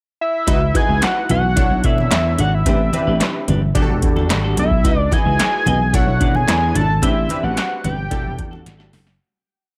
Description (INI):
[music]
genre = early-eighties boogie funk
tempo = 110 BPM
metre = 4/4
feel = straight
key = C# phrygian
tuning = A4 = 440 Hz
[part]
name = fat analog lead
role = melody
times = 0.2-8.9 s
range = E5 to A5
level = -23 LUFS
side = equal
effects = chorus
[part]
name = funky polysynth comp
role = accompaniment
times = 0.5-9.0 s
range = C4 to C#5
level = -28 LUFS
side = equal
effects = chorus
[part]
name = clean electric guitar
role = riff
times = 0.5-9.1 s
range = G3 to E5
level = -30 LUFS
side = equal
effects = lush chorus
[part]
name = vintage slap bass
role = bass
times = 0.5-9.2 s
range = E1 to B2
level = -21 LUFS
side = equal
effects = none
[part]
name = electro analog drum machine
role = drums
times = 0.5-9.2 s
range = handclaps, hi-hat, kick drum, snare drum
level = -22 LUFS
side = equal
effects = none
[part]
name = congas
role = percussion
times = 0.5-9.1 s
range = none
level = -29 LUFS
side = equal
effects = none
[sound]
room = light reverb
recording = none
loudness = -17 LUFS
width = mono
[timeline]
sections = 0.0-0.5 pickup bar; 0.5-9.2 verse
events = fade-out 7.0-9.2; drum fill 8.7-9.2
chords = 0.5 C#m11; 1.6 Bm11; 2.7 Am11; 3.8 Em11; 4.8 C#m11; 5.9 Bm11; 7.0 Am11; 8.1 Em11